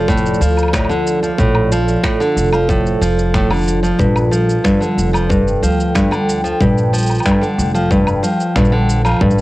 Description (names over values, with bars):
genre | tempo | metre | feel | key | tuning
folktronica | 92 BPM | 4/4 | straight | unclear | A4 = 440 Hz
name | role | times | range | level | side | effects
warbly tape-like pad | sustained chords | 0.0-9.4 s | A2 to G5 | -19 LUFS | right 1 dB | chorus, built-in reverb
nylon-string guitar | arpeggios | 0.0-9.4 s | G2 to F3 | -16 LUFS | equal | analog delay
upright bass | bass | 0.0-9.4 s | F1 to D2 | -18 LUFS | equal | none
electronic kick drum | drums | 0.1-9.3 s | none | -18 LUFS | equal | cassette tape
electronic shaker, woodblock and finger snaps | drums | 0.1-9.4 s | none | -24 LUFS | equal | cassette tape
room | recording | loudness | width
wet small room reverb, RT60 0.5 s | home recording on cassette | -12 LUFS | side -17 dB against mid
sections
0.0-9.4 A section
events
none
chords
0.0 Bbmaj7; 4.0 Gm7